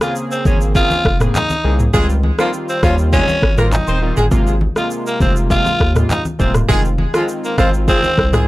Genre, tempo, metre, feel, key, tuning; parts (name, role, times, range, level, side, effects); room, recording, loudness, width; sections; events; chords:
afrobeats; 101 BPM; 4/4; straight; A4 = 440 Hz
raspy tenor saxophone; melody; 0.0-8.3 s; Ab3 to F4; -19 LUFS; equal
warm analog keys; accompaniment; 0.0-8.5 s; C3 to Ab4; -22 LUFS; equal; chorus
afro-pop drum kit; drums; 0.0-8.5 s; handclaps, kick drum, rim click, shaker, toms; -17 LUFS; equal
saturated sub bass; bass; 0.5-8.5 s; Eb1 to Eb2; -17 LUFS; equal
congas; percussion; 0.5-8.2 s; -25 LUFS; left 1 dB
warm horn section; second line; 1.9-8.4 s; F3 to C5; -20 LUFS; equal; analog delay
light reverb; dry, gritty hardware recording, transformer saturation; -13 LUFS; side -18 dB against mid
0.0-8.5 A section
0.0 Bbm9; 1.9 Dbmaj9#11; 4.3 Ab69; 6.7 Fm7